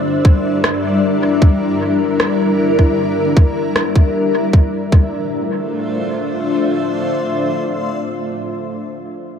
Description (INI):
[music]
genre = ambient dub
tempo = 77 BPM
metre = 4/4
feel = straight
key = D minor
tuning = A4 = 439 Hz
[part]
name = granular cloud pad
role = sustained chords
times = 0.0-8.4 s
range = G3 to E5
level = -16 LUFS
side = left 1 dB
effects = built-in reverb
[part]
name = electronic kick drum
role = drums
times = 0.2-5.2 s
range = none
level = -10 LUFS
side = equal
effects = none
[part]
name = electronic rim click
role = drums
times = 0.6-3.9 s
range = none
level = -21 LUFS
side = equal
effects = dub echo
[sound]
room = moderate spring reverb, RT60 1.8 s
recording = echo-heavy mix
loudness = -14 LUFS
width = side -7 dB against mid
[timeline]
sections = 0.0-4.5 A section; 4.5-7.7 B section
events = none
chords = 0.0 Em7b5; 4.5 Dm9